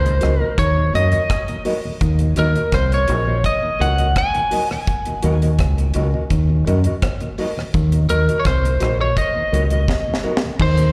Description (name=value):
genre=roots reggae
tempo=84 BPM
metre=4/4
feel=straight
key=Eb dorian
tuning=A4 = 440 Hz
part: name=lightly driven lead guitar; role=melody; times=0.0-10.9 s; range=Bb4 to Ab5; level=-24 LUFS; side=equal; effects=tape echo, slapback echo
part: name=mellow tonewheel organ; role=accompaniment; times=0.0-10.9 s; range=Eb2 to Eb4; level=-30 LUFS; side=equal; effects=slow rotary speaker, tape echo, slapback echo
part: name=deep dub fingered electric bass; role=bass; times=0.0-10.9 s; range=Bb1 to Gb2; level=-19 LUFS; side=equal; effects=none
part: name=deep reggae drum kit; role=drums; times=0.1-10.9 s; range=crash cymbal, hi-hat, kick drum, rim click, snare drum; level=-24 LUFS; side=equal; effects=none
part: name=mellow electric guitar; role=accompaniment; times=0.2-10.4 s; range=Gb4 to Eb5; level=-30 LUFS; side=equal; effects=tape echo, slapback echo
room=light reverb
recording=live gig heard through the venue's PA, recital hall reverb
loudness=-18 LUFS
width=mono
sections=0.0-10.6 A section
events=drum fill 9.9-10.6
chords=0.0 Ebm